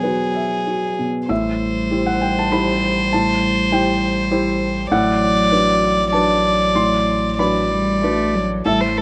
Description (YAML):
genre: neoclassical piano and strings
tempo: 94-101 BPM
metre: 3/4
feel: rubato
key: A dorian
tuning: A4 = 440 Hz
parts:
  - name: rich violin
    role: melody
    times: 0.0-9.0 s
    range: G#4 to D5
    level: -22 LUFS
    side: equal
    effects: none
  - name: warm cello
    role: second line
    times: 0.0-9.0 s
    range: F#3 to A3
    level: -25 LUFS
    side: equal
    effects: slapback echo
  - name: felt-muted upright piano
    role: accompaniment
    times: 0.0-9.0 s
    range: E2 to C6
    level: -23 LUFS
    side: equal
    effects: none
  - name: pure sine sub bass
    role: bass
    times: 1.3-9.0 s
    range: A1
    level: -31 LUFS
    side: equal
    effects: none
room: little or no reverb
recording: recorded outdoors, with no room sound, nothing above 10.3 kHz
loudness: -18 LUFS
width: mono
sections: 0.0-1.3 A section; 1.3-9.0 B section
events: none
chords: 0.0 Eadd9; 1.3 Am7; 4.9 Bm7/A